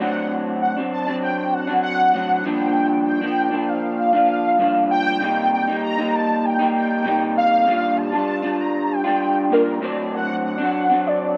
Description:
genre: indie pop.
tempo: 98 BPM.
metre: 4/4.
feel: straight.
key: C dorian.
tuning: A4 = 440 Hz.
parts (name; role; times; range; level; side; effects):
warm velvety synth lead; melody; 0.0-11.4 s; Bb4 to Bb5; -22 LUFS; equal; ensemble chorus.
electric guitar through a small old amp; accompaniment; 0.0-11.4 s; G2 to F4; -24 LUFS; equal; lush chorus, vibrato effect.
room: moderate spring reverb, RT60 2.5 s.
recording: none.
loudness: -20 LUFS.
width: mono.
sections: 0.0-11.4 A section.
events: none.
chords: 0.0 D7/A; 2.5 Gm7; 5.2 Cm7; 7.7 Bb6; 9.8 D7/A.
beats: | 0.30 0.92 1.53 2.15 | 2.76 3.38 3.99 4.60 | 5.22 5.83 6.45 7.06 | 7.67 8.29 8.90 9.51 | 10.13 10.74 11.36.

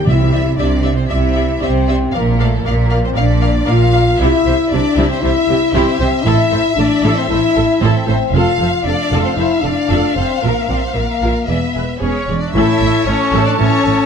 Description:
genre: cinematic, heroic adventure film score.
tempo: 116 BPM.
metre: 4/4.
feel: straight.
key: C mixolydian.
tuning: A4 = 441 Hz.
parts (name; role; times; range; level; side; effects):
warm symphonic violin section; second line; 0.0-14.1 s; A4 to A5; -23 LUFS; left 2 dB; none.
rich symphonic viola section; accompaniment; 0.0-13.9 s; A3 to D5; -22 LUFS; right 2 dB; none.
mellow French horn section; sustained chords; 0.0-14.1 s; A3 to F4; -17 LUFS; left 5 dB; none.
warm symphonic violin section; melody; 0.1-14.1 s; Db5 to F5; -23 LUFS; left 4 dB; none.
clear studio cello section; bass; 0.1-13.9 s; E2 to C3; -20 LUFS; right 3 dB; none.
rich symphonic double bass section; bass; 0.1-13.9 s; E1 to C2; -18 LUFS; right 3 dB; none.
timpani; percussion; 0.1-0.8 s; C3; -18 LUFS; equal; none.
clear trumpet; stabs; 12.0-14.1 s; Db4 to E4; -22 LUFS; right 1 dB; none.
large flute ensemble; second line; 12.5-14.1 s; A5; -25 LUFS; left 1 dB; none.
mellow cor anglais; second line; 12.5-14.1 s; C#5; -25 LUFS; right 1 dB; none.
warm clarinet; second line; 12.5-14.1 s; A4; -25 LUFS; left 3 dB; none.
dark trombone section; sustained chords; 12.5-13.8 s; E3 to C#4; -25 LUFS; right 2 dB; none.
room: moderate scoring stage reverb, RT60 1.7 s.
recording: none.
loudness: -12 LUFS.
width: side -7 dB against mid.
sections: 0.0-12.5 A section; 12.5-14.1 B section.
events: none.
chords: 0.1 Cadd9; 2.1 Bb; 4.2 C; 6.3 Am; 8.3 F; 10.4 Bb5; 11.5 E7; 12.5 A.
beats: | 0.07 0.58 1.10 1.62 | 2.14 2.66 3.17 3.69 | 4.20 4.72 5.24 5.75 | 6.27 6.78 7.30 7.82 | 8.34 8.86 9.38 9.90 | 10.43 10.95 11.48 12.01 | 12.55 13.07 13.59.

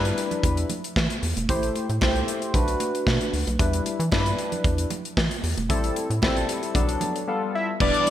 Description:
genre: early-eighties boogie funk.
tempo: 114 BPM.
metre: 4/4.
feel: straight.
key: unclear.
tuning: A4 = 440 Hz.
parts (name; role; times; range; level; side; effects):
chorused polysynth; accompaniment; 0.0-8.1 s; F#3 to C5; -26 LUFS; left 2 dB; none.
rubbery square bass; bass; 0.0-7.9 s; E1 to E3; -26 LUFS; equal; none.
modern studio drum kit; drums; 0.1-8.1 s; crash cymbal, hi-hat, kick drum, snare drum; -25 LUFS; equal; gated reverb.
congas; percussion; 0.3-8.1 s; none; -35 LUFS; right 5 dB; none.
fat analog lead; melody; 7.6-8.1 s; D5 to E5; -22 LUFS; equal; phaser.
soft string machine; sustained chords; 7.8-8.1 s; E3 to G4; -34 LUFS; left 2 dB; ensemble chorus.
room: moderate lush hall reverb, RT60 1.8 s, studio ambience.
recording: bright 1980s-style digital production.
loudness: -22 LUFS.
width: side -12 dB against mid.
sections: 0.0-7.8 A section.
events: none.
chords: 0.0 Em7; 1.5 Am7; 2.5 Bm7; 3.6 Em7; 5.7 Am7; 6.8 Bm7; 7.3 G9.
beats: 0.44 0.96 | 1.49 2.02 2.54 3.07 | 3.59 4.12 4.65 5.17 | 5.70 6.23 6.75 7.28 | 7.80.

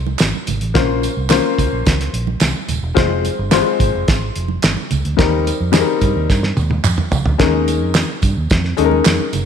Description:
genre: uptempo 1960s-style soul.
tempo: 108 BPM.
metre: 4/4.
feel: straight.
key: unclear.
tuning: A4 = 440 Hz.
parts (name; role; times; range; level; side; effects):
vintage muted fingered electric bass; bass; 0.0-9.4 s; Eb1 to G2; -20 LUFS; right 1 dB; none.
congas; percussion; 0.1-9.5 s; none; -29 LUFS; right 12 dB; none.
cloth-damped thuddy drum kit; drums; 0.2-9.5 s; hi-hat, kick drum, snare drum, toms; -17 LUFS; right 1 dB; none.
handclaps and tambourine; percussion; 0.2-9.5 s; none; -27 LUFS; right 10 dB; none.
warm upright piano; accompaniment; 0.7-9.3 s; G3 to C5; -18 LUFS; left 8 dB; none.
room: moderate echo chamber reverb, RT60 1.7 s, small room reverb.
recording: 1960s-style stereo with parts hard left and right.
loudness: -14 LUFS.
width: side -8 dB against mid.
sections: 0.0-7.4 A section; 7.4-9.5 B section.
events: drum fill 6.3-7.4.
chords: 0.0 Ab; 0.8 Bbmadd9; 3.0 Fm; 5.2 Eb6; 7.4 Eb7sus4.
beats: 0.20 | 0.76 1.31 1.86 2.42 | 2.97 3.53 4.08 4.63 | 5.19 5.74 6.29 6.85 | 7.40 7.95 8.51 9.06.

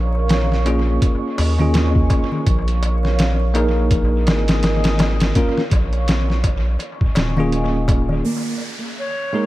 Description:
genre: trip hop.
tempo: 83 BPM.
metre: 4/4.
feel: swing 58% on 16ths.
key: Bb minor.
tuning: A4 = 441 Hz.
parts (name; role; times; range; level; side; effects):
dark analog pad; sustained chords; 0.0-9.5 s; Bb3 to Eb6; -27 LUFS; right 2 dB; chorus.
round analog bass; bass; 0.0-8.2 s; Eb1 to Eb2; -19 LUFS; equal; none.
darbuka; percussion; 0.2-8.2 s; none; -29 LUFS; left 2 dB; dub echo.
trip hop sampler-style drum kit; drums; 0.3-8.1 s; hi-hat, kick drum, snare drum; -19 LUFS; equal; dub echo.
bell-like tine electric piano; accompaniment; 0.7-9.5 s; Bb3 to Bb4; -23 LUFS; equal; medium stereo tremolo, harmonic tremolo, tape echo.
nylon-string guitar; arpeggios; 8.2-9.5 s; Ab3 to Bb3; -24 LUFS; right 3 dB; low-pass filter, tape echo.
downlifter; sound effects; 8.2-9.5 s; none; -30 LUFS; right 1 dB; none.
silver concert flute; melody; 9.0-9.5 s; Db5; -23 LUFS; equal; none.
room: little or no reverb.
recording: echo-heavy mix, vinyl crackle.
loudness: -16 LUFS.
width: side -16 dB against mid.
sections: 0.0-8.2 A section; 8.2-9.5 B section.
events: filter sweep on nylon-string guitar 8.2-9.5.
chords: 0.0 Bbm; 1.0 Eb7sus4; 2.5 Bbm; 3.9 Absus2; 5.4 Bbm; 6.8 Eb7sus4; 8.2 Bbm.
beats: 0.30 1.02 1.74 | 2.46 3.19 3.91 4.63 | 5.36 6.08 6.80 7.53 | 8.25 8.97.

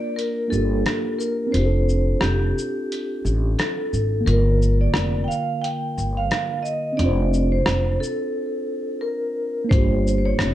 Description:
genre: lo-fi hip hop.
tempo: 88 BPM.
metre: 4/4.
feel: swing 62% on 16ths.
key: G minor.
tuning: A4 = 440 Hz.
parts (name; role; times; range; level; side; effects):
vibraphone with hard mallets; melody; 0.0-10.5 s; G4 to G5; -26 LUFS; equal; low-pass filter.
mellow tine electric piano; accompaniment; 0.0-10.5 s; D3 to C5; -26 LUFS; right 1 dB; medium stereo tremolo, cassette tape, low-pass filter, plate reverb.
trip hop sampler-style drum kit; drums; 0.2-10.5 s; hi-hat, kick drum, rim click, shaker; -24 LUFS; equal; overdrive, vintage 12-bit sampler grit.
upright bass; bass; 0.5-10.5 s; F1 to A1; -20 LUFS; equal; none.
room: light reverb.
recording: dark, warm production.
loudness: -19 LUFS.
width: side -13 dB against mid.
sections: 0.0-10.5 A section.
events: break 0.0-9.7.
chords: 0.0 Gm7; 1.5 Dm7/F; 4.3 Gm7; 7.0 Dm7/F; 9.7 Gm7.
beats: 0.17 0.85 | 1.53 2.21 2.90 3.58 | 4.26 4.94 5.62 6.31 | 6.99 7.67 8.35 9.03 | 9.71 10.40.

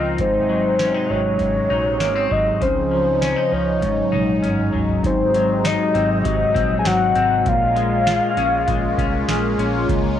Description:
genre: dream pop.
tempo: 99 BPM.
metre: 4/4.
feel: straight.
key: unclear.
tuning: A4 = 440 Hz.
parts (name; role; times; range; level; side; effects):
phased analog pad; sustained chords; 0.0-10.2 s; C3 to F4; -24 LUFS; right 2 dB; phaser, chorus, cassette tape.
semi-hollow electric guitar; arpeggios; 0.0-10.2 s; Ab2 to F4; -22 LUFS; left 4 dB; lush chorus, cassette tape, analog delay.
vintage muted fingered electric bass; bass; 0.0-10.2 s; Ab1 to Db2; -26 LUFS; right 2 dB; none.
soft octave-layered synth lead; melody; 0.2-9.6 s; C5 to Ab5; -20 LUFS; left 1 dB; chorus, analog delay.
booming analog drum machine; drums; 0.2-10.1 s; hi-hat, kick drum, snare drum, tambourine, toms; -25 LUFS; right 2 dB; none.
room: wet studio reverb, RT60 0.6 s.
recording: home recording on cassette.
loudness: -16 LUFS.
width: side -10 dB against mid.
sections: 0.0-5.0 A section; 5.0-10.2 B section.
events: drum fill 3.8-5.0.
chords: 0.2 Ab7; 2.6 Dbmaj9; 3.8 Ab7sus4; 5.0 Ab7; 7.5 Bbm7.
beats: | 0.19 0.80 1.40 2.01 | 2.61 3.22 3.83 4.43 | 5.04 5.64 6.25 6.86 | 7.46 8.07 8.67 9.28 | 9.89.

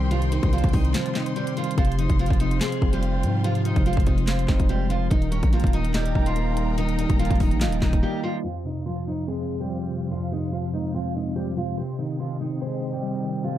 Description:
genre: hip hop, trap.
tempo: 144 BPM.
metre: 4/4.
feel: half-time.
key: F minor.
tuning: A4 = 440 Hz.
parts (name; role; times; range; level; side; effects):
picked steel-string acoustic guitar; melody; 0.0-13.6 s; F3 to Eb5; -30 LUFS; right 2 dB; low-pass filter.
mellow tine electric piano; accompaniment; 0.0-13.6 s; F2 to Eb5; -27 LUFS; equal; medium stereo tremolo, low-pass filter.
dark symphonic string section; sustained chords; 0.0-13.6 s; C4 to C6; -38 LUFS; left 1 dB; none.
distorted 808-style bass; bass; 0.0-8.0 s; Eb1 to Ab2; -24 LUFS; equal; distortion.
trap drum kit; drums; 0.1-8.6 s; handclaps, hi-hat, kick drum, snare drum; -23 LUFS; equal; none.
room: little or no reverb.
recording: dark, warm production, low-pass filter.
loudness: -21 LUFS.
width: side -12 dB against mid.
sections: 0.0-8.4 A section; 8.4-13.6 B section.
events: break 0.9-1.8, 8.0-8.4.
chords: 0.0 Cm; 1.8 Fm; 5.1 Eb; 8.4 Fm; 11.8 Cm.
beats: | 0.11 0.53 0.94 1.36 | 1.78 2.19 2.61 3.03 | 3.44 3.86 4.28 4.69 | 5.11 5.53 5.94 6.36 | 6.78 7.19 7.61 8.03 | 8.44 8.86 9.28 9.69 | 10.11 10.53 10.94 11.36 | 11.78 12.19 12.61 13.03 | 13.44.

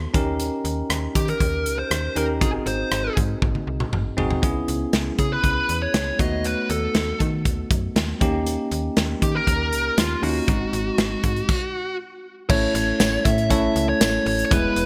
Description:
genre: 1980s-style pop.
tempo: 119 BPM.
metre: 4/4.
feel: straight.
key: unclear.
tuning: A4 = 440 Hz.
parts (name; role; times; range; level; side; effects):
bell-like tine electric piano; accompaniment; 0.0-14.9 s; G#3 to C#5; -28 LUFS; equal; none.
slap-like FM bass; bass; 0.0-14.9 s; E1 to D#3; -30 LUFS; equal; none.
modern studio drum kit; drums; 0.1-14.9 s; crash cymbal, hi-hat, kick drum, rim click, snare drum, tambourine, toms; -25 LUFS; equal; none.
high-gain lead guitar; melody; 1.2-14.9 s; E#4 to E5; -27 LUFS; equal; distortion.
room: moderate plate reverb, RT60 2.0 s, studio reverb.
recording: bright 1980s-style digital production.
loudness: -22 LUFS.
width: mono.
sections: 0.0-12.5 A section; 12.5-14.9 B section.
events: drum fill 3.4-4.4; stop 11.5-12.5.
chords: 0.1 D#7; 2.4 G#7; 4.4 C#m7; 6.2 B7/D#; 8.2 D#7; 10.5 G#7; 12.5 A.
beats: | 0.40 0.90 1.40 1.91 | 2.41 2.92 3.42 3.92 | 4.43 4.93 5.44 5.94 | 6.45 6.95 7.46 7.96 | 8.46 8.97 9.47 9.98 | 10.48 10.98 11.49 11.99 | 12.50 13.00 13.51 14.01 | 14.51.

